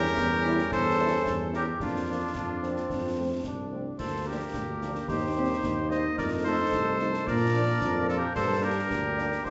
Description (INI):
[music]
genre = military-style march for wind band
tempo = 110 BPM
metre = 2/4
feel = straight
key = Bb major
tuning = A4 = 440 Hz
[part]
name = clear cornet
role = melody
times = 0.0-9.5 s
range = F4 to Eb5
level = -34 LUFS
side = equal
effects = none
[part]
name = mellow woodwind section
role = second line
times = 0.0-9.5 s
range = D4 to C5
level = -35 LUFS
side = equal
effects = none
[part]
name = clear trombone section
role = sustained chords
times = 0.0-9.5 s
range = G3 to Eb4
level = -37 LUFS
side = equal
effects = none
[part]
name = mellow tuba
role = bass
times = 0.0-9.5 s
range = C2 to Bb2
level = -33 LUFS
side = equal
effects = none
[part]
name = concert snare drum, concert bass drum and clash cymbals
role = drums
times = 0.2-9.5 s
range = none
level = -40 LUFS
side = equal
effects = none
[part]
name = mellow French horn section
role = accompaniment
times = 0.4-9.3 s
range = F3 to E4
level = -39 LUFS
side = equal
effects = none
[sound]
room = wet recital hall reverb, RT60 1.5 s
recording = recorded in a church or concert hall, nothing above 7.8 kHz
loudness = -28 LUFS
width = mono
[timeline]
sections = 0.0-9.5 A section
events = none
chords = 0.0 Edim7; 1.8 Bb/F; 2.9 F; 4.0 Bb/D; 5.1 Cm7/Eb; 6.2 F7; 7.3 Bb; 8.4 Gm